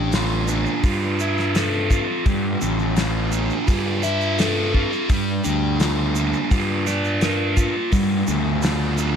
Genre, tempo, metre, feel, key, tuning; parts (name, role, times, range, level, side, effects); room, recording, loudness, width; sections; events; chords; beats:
psychedelic rock; 85 BPM; 4/4; straight; G dorian; A4 = 440 Hz
fuzz guitar; riff; 0.0-9.2 s; G3 to E5; -22 LUFS; equal; distortion, phaser
fuzz fingered electric bass; bass; 0.0-9.2 s; A1 to G2; -24 LUFS; equal; overdrive
damped 70s drum kit; drums; 0.1-8.8 s; hi-hat, kick drum, snare drum; -22 LUFS; equal
tube shaker; percussion; 0.1-9.1 s; -37 LUFS; right 8 dB
light reverb, small room reverb; -18 LUFS; side -8 dB against mid
0.0-9.2 A section
0.0 Dmadd9; 5.1 Gm7
0.13 0.84 1.55 | 2.26 2.97 3.68 4.39 | 5.10 5.80 6.51 7.22 | 7.93 8.64